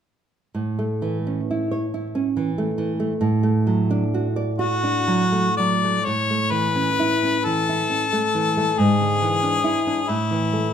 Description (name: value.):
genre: romantic duo for harmonica and classical guitar.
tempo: 39-48 BPM (dotted quarters).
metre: 6/8.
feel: rubato.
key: A major.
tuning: A4 = 436 Hz.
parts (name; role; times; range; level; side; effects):
nylon-string guitar; accompaniment; 0.5-10.7 s; G#2 to D5; -21 LUFS; right 2 dB; none.
clear harmonica; melody; 4.6-10.7 s; E4 to D5; -21 LUFS; left 4 dB; none.
room: moderate recital hall reverb, RT60 1.4 s.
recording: minimal, uncompressed stereo recording.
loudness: -19 LUFS.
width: side -8 dB against mid.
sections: 0.6-6.1 A section; 6.1-10.7 B section.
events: none.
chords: 0.6 A; 3.2 D/A; 6.1 A; 8.8 E7/G#; 10.1 A5.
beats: | 0.56 1.94 | 3.21 4.59 | 6.07 7.46 | 8.80 10.11.